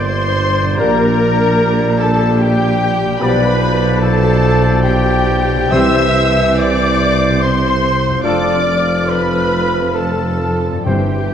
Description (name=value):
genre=classical, slow romantic movement for symphony orchestra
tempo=64-76 BPM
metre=3/4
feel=rubato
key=unclear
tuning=A4 = 440 Hz
part: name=muted studio violin section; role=melody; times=0.0-11.3 s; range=G5 to E6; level=-22 LUFS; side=left 4 dB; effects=none
part: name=mellow cor anglais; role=second line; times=0.0-11.3 s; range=G4 to E5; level=-22 LUFS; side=right 1 dB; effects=none
part: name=mellow hollow concert flute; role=second line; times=0.0-11.3 s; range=F6 to G6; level=-26 LUFS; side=left 1 dB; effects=none
part: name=muted studio violin section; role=second line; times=0.0-11.3 s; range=G4 to E5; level=-24 LUFS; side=left 2 dB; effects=none
part: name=warm clarinet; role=second line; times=0.0-11.3 s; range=A4 to D5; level=-27 LUFS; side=left 2 dB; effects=none
part: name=dark bassoon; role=accompaniment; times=0.0-11.3 s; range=E3 to Bb3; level=-23 LUFS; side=equal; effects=none
part: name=muted studio viola section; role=accompaniment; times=0.0-11.3 s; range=G4 to E5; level=-22 LUFS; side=left 1 dB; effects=none
part: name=concert harp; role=arpeggios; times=0.0-11.3 s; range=F2 to D5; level=-25 LUFS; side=left 7 dB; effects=none
part: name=mellow tuba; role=bass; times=0.0-11.3 s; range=F1 to C2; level=-20 LUFS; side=right 3 dB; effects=none
part: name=muted studio cello section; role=bass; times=0.0-11.3 s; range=F2 to C3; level=-21 LUFS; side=right 1 dB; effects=none
part: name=muted studio double bass section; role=bass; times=0.0-11.3 s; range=F1 to C2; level=-21 LUFS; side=right 2 dB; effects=none
part: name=mellow French horn section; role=sustained chords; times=0.8-11.2 s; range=B3 to G4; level=-23 LUFS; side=left 4 dB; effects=none
part: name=mellow trombone section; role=sustained chords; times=0.8-11.2 s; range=E3 to Bb3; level=-26 LUFS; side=right 3 dB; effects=none
part: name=dark trumpet section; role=stabs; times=0.8-11.2 s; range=A4 to D5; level=-26 LUFS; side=right 1 dB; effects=none
part: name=timpani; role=percussion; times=5.7-7.0, 10.9-11.3 s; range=G2 to C3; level=-21 LUFS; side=equal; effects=none
room=wet scoring stage reverb, RT60 1.9 s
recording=dark, warm production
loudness=-12 LUFS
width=side -8 dB against mid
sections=0.0-11.3 A section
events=none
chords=0.0 Gm; 0.8 Gm/Bb; 3.2 G7/B; 5.7 C; 8.2 Dm/F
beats=| 0.79 1.59 2.40 | 3.21 4.02 4.84 | 5.72 6.58 7.42 | 8.24 9.10 9.96 | 10.86